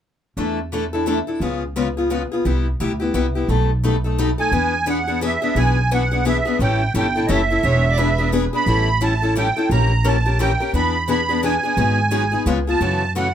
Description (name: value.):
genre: acoustic string swing (jazz manouche).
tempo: 174 BPM.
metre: 3/4.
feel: swing 61% on 8ths.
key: E mixolydian.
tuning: A4 = 439 Hz.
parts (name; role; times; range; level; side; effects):
picked steel-string acoustic guitar; accompaniment; 0.4-13.3 s; B2 to A#4; -21 LUFS; left 3 dB; none.
upright bass; bass; 0.4-13.3 s; E1 to F#2; -21 LUFS; right 1 dB; none.
musette accordion; melody; 4.4-13.3 s; D#5 to B5; -21 LUFS; right 4 dB; plate reverb.
warm violin; second line; 7.6-8.4 s; B4 to D5; -26 LUFS; right 4 dB; none.
room: light reverb.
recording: none.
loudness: -17 LUFS.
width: side -9 dB against mid.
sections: 0.4-4.5 A section; 4.5-13.3 B section.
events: none.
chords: 0.4 E7sus4; 1.4 C#7; 2.4 Cmaj9; 3.5 Baug7; 4.5 E7; 6.6 A7; 7.6 E7; 8.7 A7; 9.7 A#dim7; 10.7 E7; 11.8 G#m7; 12.5 C#7; 12.8 F#m7.